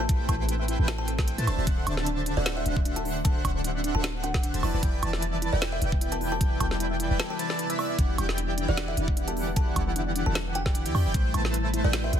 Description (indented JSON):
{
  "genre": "future bass",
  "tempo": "152 BPM",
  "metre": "4/4",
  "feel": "swing 54% on 16ths, half-time",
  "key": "E minor",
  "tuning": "A4 = 441 Hz",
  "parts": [
    { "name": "kalimba", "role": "melody", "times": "0.0-12.2 s", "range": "D5 to A5", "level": "-35 LUFS", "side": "left 1 dB", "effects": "sidechain pumping, digital delay" },
    { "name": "ethereal airy pad", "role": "sustained chords", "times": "0.0-12.2 s", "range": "C3 to G4", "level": "-36 LUFS", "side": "left 1 dB", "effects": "ensemble chorus, built-in reverb, sidechain pumping" },
    { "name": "airy dreamy lead", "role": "arpeggios", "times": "0.0-12.2 s", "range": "E5 to A5", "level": "-37 LUFS", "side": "equal", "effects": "chorus, sidechain pumping" },
    { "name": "soft round pluck", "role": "arpeggios", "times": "0.0-12.2 s", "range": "D4 to A5", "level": "-39 LUFS", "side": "left 4 dB", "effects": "chorus, sidechain pumping, ping-pong delay" },
    { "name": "soft supersaw", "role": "riff", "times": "0.0-12.2 s", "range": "D3 to A5", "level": "-33 LUFS", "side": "right 1 dB", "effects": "sidechain pumping" },
    { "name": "warm 808-style bass", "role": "bass", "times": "0.0-12.2 s", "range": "D1 to A2", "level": "-29 LUFS", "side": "equal", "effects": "sidechain pumping" },
    { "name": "electronic kick drum", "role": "drums", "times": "0.1-11.2 s", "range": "none", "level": "-26 LUFS", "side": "equal", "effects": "none" },
    { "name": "trap drum kit", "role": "drums", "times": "0.1-12.2 s", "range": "hi-hat, snare drum, woodblock", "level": "-32 LUFS", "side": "right 2 dB", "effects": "soft clipping on snare" }
  ],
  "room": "little or no reverb",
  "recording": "dense, heavily limited modern master",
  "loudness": "-24 LUFS",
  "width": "side -9 dB against mid",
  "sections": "0.0-12.2 A section",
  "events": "break 7.2-8.0",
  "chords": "0.0 Am7; 1.5 D7; 4.6 Cmaj7/E; 8.0 Em7; 11.1 Am7",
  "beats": "| 0.09 0.49 0.88 1.27 | 1.67 2.06 2.46 2.85 | 3.25 3.64 4.04 4.43 | 4.83 5.22 5.62 6.01 | 6.41 6.80 7.20 7.59 | 7.99 8.38 8.78 9.17 | 9.56 9.96 10.35 10.75 | 11.14 11.54 11.93"
}